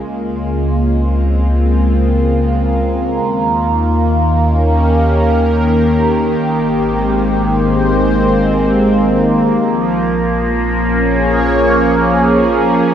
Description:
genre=ambient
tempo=57 BPM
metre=3/4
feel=straight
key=Bb dorian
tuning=A4 = 440 Hz
part: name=warm analog pad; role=sustained chords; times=0.0-12.9 s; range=Db3 to Db5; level=-15 LUFS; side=equal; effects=chorus
part: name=warm sub bass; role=bass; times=0.0-12.9 s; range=Ab1 to Eb2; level=-17 LUFS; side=equal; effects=none
part: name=overtone-sweeping drone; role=drone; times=0.2-12.9 s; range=Bb3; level=-16 LUFS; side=equal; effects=chorus, built-in reverb
room=wet plate reverb, RT60 3.6 s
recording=none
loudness=-11 LUFS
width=side -9 dB against mid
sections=0.0-12.9 A section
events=fade-in on analog synth pad 0.0-12.9; fade-out on sub bass 0.0-12.9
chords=0.1 Dbmaj7; 3.3 Eb7; 6.4 Abmaj7; 9.6 Bbm7

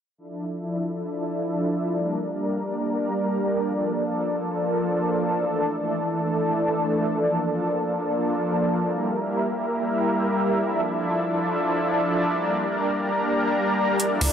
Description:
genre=uplifting trance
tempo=free time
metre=none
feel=none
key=D minor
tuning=A4 = 441 Hz
part: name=electronic hi-hat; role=drums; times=14.0-14.3 s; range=none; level=-23 LUFS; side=right 1 dB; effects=overdrive
part: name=tight sequencer bass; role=bass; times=14.2-14.3 s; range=D2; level=-23 LUFS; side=equal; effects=none
room=moderate huge ambient reverb, RT60 6.9 s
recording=none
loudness=-22 LUFS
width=side -8 dB against mid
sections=0.2-14.0 A section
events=none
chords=none

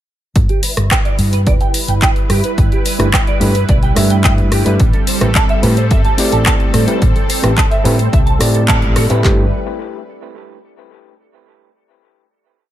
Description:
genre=nu-disco, nu disco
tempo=108 BPM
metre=4/4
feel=straight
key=G major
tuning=A4 = 441 Hz
part: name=lush unison pad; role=sustained chords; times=0.4-9.5 s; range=G3 to B4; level=-22 LUFS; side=right 1 dB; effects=chorus, phaser, sidechain pumping
part: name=hollow-body short-scale fingered electric bass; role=bass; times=0.4-9.5 s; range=E1 to A2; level=-15 LUFS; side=equal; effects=none
part: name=house drum kit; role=drums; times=0.4-9.4 s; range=handclaps, kick drum, snare drum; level=-14 LUFS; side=equal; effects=small room ambience
part: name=house drum kit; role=drums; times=0.4-9.2 s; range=handclaps, hi-hat, rim click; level=-19 LUFS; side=left 1 dB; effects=small room ambience
part: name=semi-hollow electric guitar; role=riff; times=0.5-9.5 s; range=E4 to A5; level=-22 LUFS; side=right 4 dB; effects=ensemble chorus, low-pass filter, ping-pong delay
part: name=overdriven reed electric piano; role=accompaniment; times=3.0-9.5 s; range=A3 to E5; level=-20 LUFS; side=equal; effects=sidechain pumping, ping-pong delay
room=digital ambience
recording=lossy compression artefacts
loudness=-11 LUFS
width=side -12 dB against mid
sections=0.4-9.2 groove; 9.2-11.5 final chord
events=band accent 8.7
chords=0.4 G6; 4.8 Am7; 9.2 G6

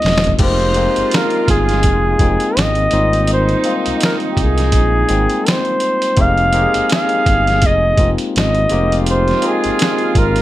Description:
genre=R&B, neo-soul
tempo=83 BPM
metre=4/4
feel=swing 57% on 16ths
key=F minor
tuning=A4 = 440 Hz
part: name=breathy flugelhorn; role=melody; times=0.0-10.4 s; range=G4 to F5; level=-16 LUFS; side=equal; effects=slapback echo
part: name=barky tine electric piano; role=accompaniment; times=0.0-10.4 s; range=G3 to G5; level=-20 LUFS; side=left 4 dB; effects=overdrive
part: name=smooth synth bass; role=bass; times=0.0-10.4 s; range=E1 to C2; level=-17 LUFS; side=equal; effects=none
part: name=boom bap sampler-style drum kit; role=drums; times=0.0-10.4 s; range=crash cymbal, hi-hat, kick drum, snare drum, toms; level=-18 LUFS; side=equal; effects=none
part: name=warm horn section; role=stabs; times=0.4-10.4 s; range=C3 to Ab4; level=-24 LUFS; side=right 8 dB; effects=none
room=little or no reverb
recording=none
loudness=-12 LUFS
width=side -14 dB against mid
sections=0.4-10.4 A section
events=drum fill 0.0-0.4; band accent 0.0-0.4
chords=0.4 Fm7; 2.9 Abmaj9; 6.2 Fm7

